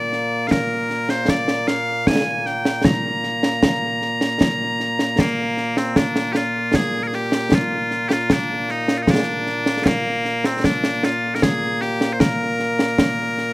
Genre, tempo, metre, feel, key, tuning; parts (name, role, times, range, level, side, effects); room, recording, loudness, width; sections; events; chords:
scottish traditional, Scottish pipe music; 77 BPM; 3/4; straight; Bb mixolydian; A4 = 440 Hz
loud bright bagpipes; melody; 0.0-13.5 s; Bb2 to Bb5; -20 LUFS; equal
concert snare drum and concert bass drum; drums; 0.1-13.5 s; -20 LUFS; equal
little or no reverb; recorded outdoors, with no room sound; -17 LUFS; side -20 dB against mid
0.0-5.2 A section; 5.2-13.5 A section